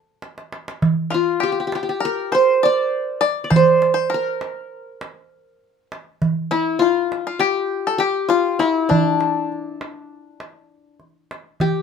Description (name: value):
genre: Turkish makam ensemble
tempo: 200 BPM (eighths)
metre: 9/8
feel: straight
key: D makam ussak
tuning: A4 = 440 Hz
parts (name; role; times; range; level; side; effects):
- darbuka; percussion; 0.2-11.7 s; none; -21 LUFS; right 3 dB; none
- qanun; melody; 1.1-11.8 s; D4 to D5; -18 LUFS; left 1 dB; none
- bluegrass banjo; second line; 1.1-11.0 s; D4 to D5; -24 LUFS; left 5 dB; none
room: light reverb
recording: minimal, uncompressed stereo recording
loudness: -17 LUFS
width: side -6 dB against mid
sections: 0.0-11.6 A section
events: drum fill 0.2-0.8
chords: none